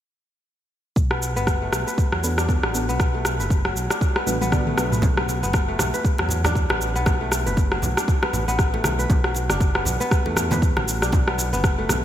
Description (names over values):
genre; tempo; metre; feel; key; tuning
afro house; 118 BPM; 4/4; swing 57% on 16ths; B minor; A4 = 441 Hz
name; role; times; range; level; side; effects
smooth synth bass; bass; 1.0-12.0 s; F#1 to E2; -26 LUFS; equal; sidechain pumping
afro-pop drum kit; drums; 1.0-12.0 s; rim click, shaker, toms; -24 LUFS; equal; studio reverb, gated reverb
electronic kick drum; drums; 1.0-11.8 s; none; -21 LUFS; equal; studio reverb
kora; arpeggios; 1.1-12.0 s; F#3 to B4; -28 LUFS; left 1 dB; sidechain pumping, low-pass filter, ping-pong delay
deep mellow chord stab; stabs; 2.2-5.3 s; B3 to D5; -30 LUFS; equal; chorus, sidechain pumping, ping-pong delay
swell; sound effects; 4.2-5.0 s; none; -37 LUFS; left 1 dB; none
congas; percussion; 5.0-12.0 s; none; -30 LUFS; right 1 dB; none
room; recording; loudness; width
light reverb; bright 1980s-style digital production; -19 LUFS; side -11 dB against mid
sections
1.0-5.0 A section; 5.0-12.0 B section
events
drum fill 4.3-5.0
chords
1.0 Bm7